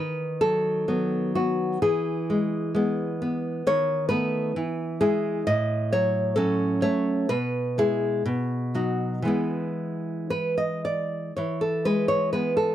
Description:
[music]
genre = romantic piece for solo classical guitar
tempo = 56-67 BPM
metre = 2/4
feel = rubato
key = E major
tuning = A4 = 440 Hz
[part]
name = nylon-string guitar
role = solo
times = 0.0-12.7 s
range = A2 to D#5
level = -23 LUFS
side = equal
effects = none
[sound]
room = light reverb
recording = dry, close 1970s-style studio recording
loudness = -23 LUFS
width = side -11 dB against mid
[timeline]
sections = 0.0-11.4 A section; 11.4-12.7 A section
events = none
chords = 0.0 B7/D#; 1.8 E; 3.6 B7/D#; 4.6 E; 5.5 F#m/A; 7.3 E/B; 8.3 B; 9.3 E

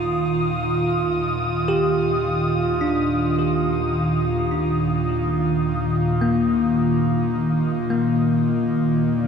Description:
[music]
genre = ambient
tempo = 53 BPM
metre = 3/4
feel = straight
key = Eb major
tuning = A4 = 441 Hz
[part]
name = airy breathy pad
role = sustained chords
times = 0.0-9.3 s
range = Bb2 to Eb6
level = -20 LUFS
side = right 1 dB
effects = chorus
[part]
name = bell-like tine electric piano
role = arpeggios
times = 0.0-9.3 s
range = Bb3 to G4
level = -24 LUFS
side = left 3 dB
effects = phaser, ping-pong delay
[part]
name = deep rumbling drone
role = bass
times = 0.0-9.3 s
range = Eb2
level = -35 LUFS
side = left 1 dB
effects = built-in reverb
[sound]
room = wet scoring stage reverb, RT60 2.0 s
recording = dark, warm production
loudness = -19 LUFS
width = side -6 dB against mid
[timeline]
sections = 0.0-9.3 A section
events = fade-in on synth drone 0.0-9.3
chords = 0.0 Ebsus2; 7.9 Bb/Eb

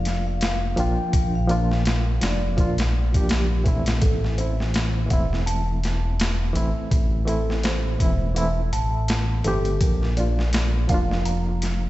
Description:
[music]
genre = trip hop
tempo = 83 BPM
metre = 4/4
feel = swing 57% on 16ths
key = A phrygian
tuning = A4 = 439 Hz
[part]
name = vibraphone with soft mallets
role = melody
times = 0.0-2.7 s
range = D5 to G5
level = -33 LUFS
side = left 4 dB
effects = vintage 12-bit sampler grit, dub echo
[part]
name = barky reed electric piano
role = accompaniment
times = 0.0-11.9 s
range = E3 to G4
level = -27 LUFS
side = equal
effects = overdrive, fast tremolo, tape echo
[part]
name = dark detuned saw bass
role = bass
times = 0.0-11.9 s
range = E1 to Bb1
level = -23 LUFS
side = equal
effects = none
[part]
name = boom bap sampler-style drum kit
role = drums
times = 0.1-11.8 s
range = hi-hat, kick drum, snare drum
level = -25 LUFS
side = equal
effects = overdrive
[part]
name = music box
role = arpeggios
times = 4.0-11.6 s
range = A4 to Bb5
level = -32 LUFS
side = right 2 dB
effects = tape echo
[sound]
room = little or no reverb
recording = played on a big sound system in a bare room, stone room reverb, nothing above 8.0 kHz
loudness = -20 LUFS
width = side -16 dB against mid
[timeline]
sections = 0.0-11.9 A section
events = none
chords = 0.0 Bb; 4.0 Am; 9.8 Bb

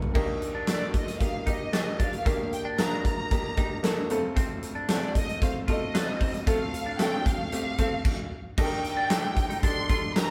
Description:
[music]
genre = piano-driven pop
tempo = 114 BPM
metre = 4/4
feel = straight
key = unclear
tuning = A4 = 440 Hz
[part]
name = bright grand piano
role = accompaniment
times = 0.0-10.3 s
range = F1 to C5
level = -34 LUFS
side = equal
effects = none
[part]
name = huge arena drum kit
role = drums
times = 0.0-10.3 s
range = crash cymbal, handclaps, hi-hat, kick drum, snare drum, toms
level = -30 LUFS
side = equal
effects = none
[part]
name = twelve-string electric guitar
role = riff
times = 0.1-10.0 s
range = Bb3 to F4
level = -39 LUFS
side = equal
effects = spring reverb
[part]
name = warm symphonic violin section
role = melody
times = 0.7-10.3 s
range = D5 to C6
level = -35 LUFS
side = equal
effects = none
[sound]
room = moderate stone room reverb, RT60 1.0 s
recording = band playing live in one room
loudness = -27 LUFS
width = mono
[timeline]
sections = 0.2-8.6 A section; 8.6-10.3 B section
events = drum fill 0.0; stop 8.1-8.6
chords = 0.2 Ebmaj7; 4.1 F; 8.6 Ebmaj7

